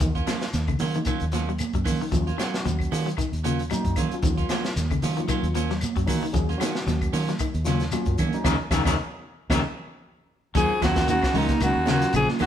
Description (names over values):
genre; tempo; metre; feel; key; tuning
afrobeat; 114 BPM; 4/4; swing 56% on 16ths; Eb minor; A4 = 444 Hz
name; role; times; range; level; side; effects
electric guitar at the edge of break-up; arpeggios; 0.0-12.5 s; Db3 to Gb3; -30 LUFS; left 5 dB; none
fingered electric bass; bass; 0.0-12.5 s; Bb1 to Eb3; -27 LUFS; equal; none
crunchy breakbeat drum kit; drums; 0.0-12.5 s; hi-hat, kick drum, snare drum; -29 LUFS; equal; none
congas; percussion; 0.0-12.5 s; none; -32 LUFS; right 6 dB; none
shekere; percussion; 0.0-12.5 s; none; -36 LUFS; left 3 dB; none
electric guitar at the edge of break-up; stabs; 0.2-12.5 s; Gb3 to F4; -32 LUFS; right 8 dB; none
claves; percussion; 0.3-12.5 s; none; -40 LUFS; left 4 dB; none
overdriven tine electric piano; accompaniment; 2.1-12.4 s; Gb3 to Ab4; -33 LUFS; left 4 dB; none
raspy alto saxophone; melody; 10.6-12.5 s; Eb4 to Ab4; -24 LUFS; left 1 dB; none
buzzing marimba with medium hard mallets; second line; 10.6-12.5 s; Bb3 to Eb4; -31 LUFS; right 3 dB; none
raspy baritone saxophone; second line; 10.6-12.3 s; Eb2 to Ab2; -34 LUFS; right 2 dB; none
room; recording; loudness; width
moderate stone room reverb, RT60 1.2 s; band playing live in one room; -22 LUFS; side -10 dB against mid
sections
0.0-10.6 A section; 10.6-12.5 B section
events
band accent 8.5-10.6; drum fill 9.5-10.6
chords
0.0 Ebm9